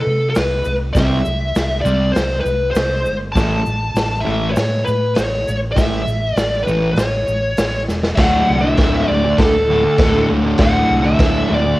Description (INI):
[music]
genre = garage rock duo or trio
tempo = 99 BPM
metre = 4/4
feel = straight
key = D mixolydian from 8.2 s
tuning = A4 = 440 Hz
[part]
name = fuzz lead guitar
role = melody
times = 0.0-11.8 s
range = A4 to A5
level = -19 LUFS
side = equal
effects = distortion, cassette tape
[part]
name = hollow-body short-scale fingered electric bass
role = bass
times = 0.0-11.7 s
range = D1 to C3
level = -22 LUFS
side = equal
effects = none
[part]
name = raw garage drum kit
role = drums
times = 0.3-11.3 s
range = crash cymbal, hi-hat, kick drum, snare drum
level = -20 LUFS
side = equal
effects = cassette tape
[part]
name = egg shaker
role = percussion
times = 0.4-8.0 s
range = none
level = -42 LUFS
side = right 5 dB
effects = none
[part]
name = fuzz guitar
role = riff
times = 1.0-11.8 s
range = D2 to C4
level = -18 LUFS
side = equal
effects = distortion, cassette tape
[sound]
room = small room ambience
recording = home recording on cassette, faint mains hum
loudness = -14 LUFS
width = side -18 dB against mid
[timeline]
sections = 0.0-8.2 A section; 8.2-11.8 B section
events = drum fill 7.9-8.2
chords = 0.0 C; 3.4 A; 8.2 D